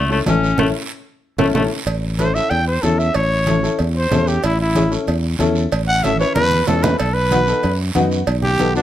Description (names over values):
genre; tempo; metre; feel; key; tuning
latin, cumbia; 187 BPM; 4/4; straight; A major; A4 = 440 Hz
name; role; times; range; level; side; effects
bright clarinet; second line; 0.0-1.6 s; A3 to C#4; -21 LUFS; left 4 dB; none
fingered electric bass; bass; 0.0-8.8 s; A1 to F#2; -20 LUFS; equal; none
warm upright piano; accompaniment; 0.1-8.8 s; B3 to B4; -21 LUFS; left 3 dB; none
congas; percussion; 0.3-8.8 s; none; -24 LUFS; right 1 dB; none
cowbell and timbales; percussion; 0.3-8.8 s; none; -26 LUFS; right 5 dB; none
guiro; percussion; 0.3-8.8 s; none; -32 LUFS; right 6 dB; none
growling trumpet; melody; 2.2-8.8 s; D4 to G5; -18 LUFS; equal; none
room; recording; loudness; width
light reverb; none; -15 LUFS; side -12 dB against mid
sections
0.0-1.9 A section; 1.9-8.8 B section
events
clarinet solo 0.0-1.9; band accent 0.6-1.9; drum fill 0.9-1.9, 6.4-7.0; trumpet solo 1.9-8.8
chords
0.0 A; 7.0 B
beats
0.27 | 0.59 0.91 1.23 1.55 | 1.87 2.19 2.51 2.83 | 3.15 3.48 3.79 4.12 | 4.44 4.76 5.08 5.40 | 5.72 6.04 6.36 6.68 | 7.00 7.32 7.64 7.96 | 8.28 8.60